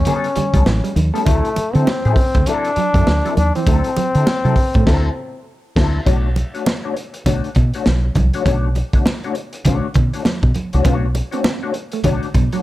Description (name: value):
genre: funk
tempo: 100 BPM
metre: 4/4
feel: swing 60% on 16ths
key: unclear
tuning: A4 = 440 Hz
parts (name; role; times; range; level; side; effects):
- clear trombone; melody; 0.0-5.4 s; A3 to D4; -20 LUFS; left 2 dB; plate reverb
- electric guitar at the edge of break-up; riff; 0.0-4.8, 10.9-12.6 s; E3 to D4; -25 LUFS; right 7 dB; wide subtle chorus
- fingered electric bass; bass; 0.0-12.5 s; A1 to D3; -17 LUFS; equal; none
- mellow electric guitar; accompaniment; 0.1-12.6 s; F#3 to C#5; -24 LUFS; left 6 dB; wah, lush chorus, plate reverb
- crunchy breakbeat drum kit; drums; 0.1-12.6 s; crash cymbal, hi-hat, kick drum, snare drum; -18 LUFS; equal; none
- congas; percussion; 0.1-12.5 s; none; -24 LUFS; right 4 dB; none
room: light reverb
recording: none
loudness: -15 LUFS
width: side -16 dB against mid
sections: 0.0-6.1 A section; 6.1-12.6 B section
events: band accent 4.9-6.1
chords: 0.0 A9; 1.3 D9; 6.1 Bm9